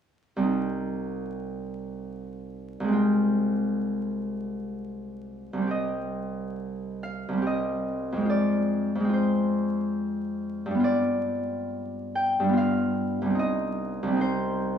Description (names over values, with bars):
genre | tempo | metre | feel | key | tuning
classical, solo harp piece | 57-76 BPM | 3/4 | rubato | C minor | A4 = 440 Hz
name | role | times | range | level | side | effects
Celtic harp | solo | 0.4-14.8 s | C2 to G5 | -25 LUFS | equal | none
room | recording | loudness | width
wet recital hall reverb, RT60 1.6 s | vinyl crackle, small room reverb | -25 LUFS | side -8 dB against mid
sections
0.5-5.7 A section; 5.7-14.8 B section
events
none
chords
0.5 Cm; 3.0 Fm/C; 5.7 Cm; 8.3 Fm; 10.8 G7; 13.4 Cm